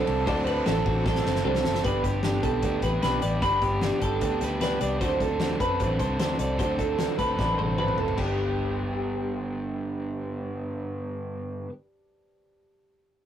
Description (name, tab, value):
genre	jangly indie pop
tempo	152 BPM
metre	4/4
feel	straight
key	G major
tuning	A4 = 441 Hz
part	overdriven electric guitar	accompaniment	0.0-11.7 s	G2 to A4	-30 LUFS	right 2 dB	none
part	warm upright piano	accompaniment	0.0-13.3 s	D4 to D5	-34 LUFS	right 1 dB	none
part	twelve-string electric guitar	arpeggios	0.0-9.3 s	F#4 to D5	-28 LUFS	right 1 dB	spring reverb
part	vintage muted fingered electric bass	bass	0.1-11.2 s	F#1 to F#2	-30 LUFS	left 1 dB	none
part	loose indie drum kit	drums	0.1-8.3 s	crash cymbal, hi-hat, kick drum, ride cymbal, snare drum, toms	-31 LUFS	left 1 dB	none
room	wet booth ambience, RT60 0.2 s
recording	rough rehearsal-room recording, warm saturation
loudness	-24 LUFS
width	side -10 dB against mid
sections	0.0-1.8 A section; 1.8-8.2 B section; 8.2-11.3 C section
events	drum fill 1.1-1.8, 7.4-8.2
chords	0.0 D7; 1.8 G; 5.0 D7; 8.2 G